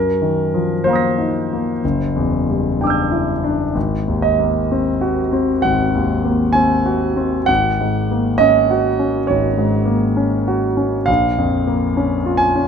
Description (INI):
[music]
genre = classical, impressionist solo piano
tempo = 62-69 BPM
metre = 4/4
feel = rubato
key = Gb lydian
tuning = A4 = 445 Hz
[part]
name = clear concert grand piano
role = solo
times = 0.0-12.7 s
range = Gb1 to Bb6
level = -15 LUFS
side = equal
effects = none
[sound]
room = moderate recital hall reverb, RT60 1.5 s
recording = close, detailed microphones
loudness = -15 LUFS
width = side -7 dB against mid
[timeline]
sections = 0.0-12.7 A section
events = none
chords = 0.0 Ebmadd9/Gb; 1.8 Cadd9/Gb; 3.8 Ab9; 7.5 Gbadd9/Ab; 11.1 Bbm